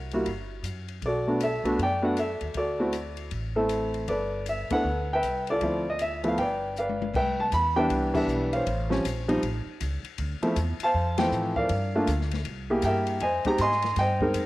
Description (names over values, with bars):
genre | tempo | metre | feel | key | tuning
jazz piano trio | 158 BPM | 4/4 | swing 63% on 8ths | G major, C major from 7.1 s | A4 = 435 Hz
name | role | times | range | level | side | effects
warm upright piano | melody | 0.0-14.5 s | E3 to C6 | -25 LUFS | equal | none
upright bass | bass | 0.0-14.5 s | G1 to A2 | -31 LUFS | equal | none
open jazz drum kit | drums | 0.1-14.5 s | crash cymbal, hi-hat, kick drum, ride cymbal, snare drum, toms | -38 LUFS | left 5 dB | none
room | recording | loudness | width
moderate spring reverb, RT60 1.4 s, small room ambience | 1960s-style stereo | -24 LUFS | side -17 dB against mid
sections
0.0-7.1 A section; 7.1-14.5 B section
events
band accent 4.7, 8.1, 11.1; drum fill 6.8-7.1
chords
0.0 C7(no3); 1.0 Bm7; 2.6 D9; 4.1 G69; 5.6 Dm7; 6.4 G7; 7.1 Cmaj7; 8.7 Aaug; 10.2 Dm7; 11.7 Gm7; 12.5 C7b13; 13.2 Fm9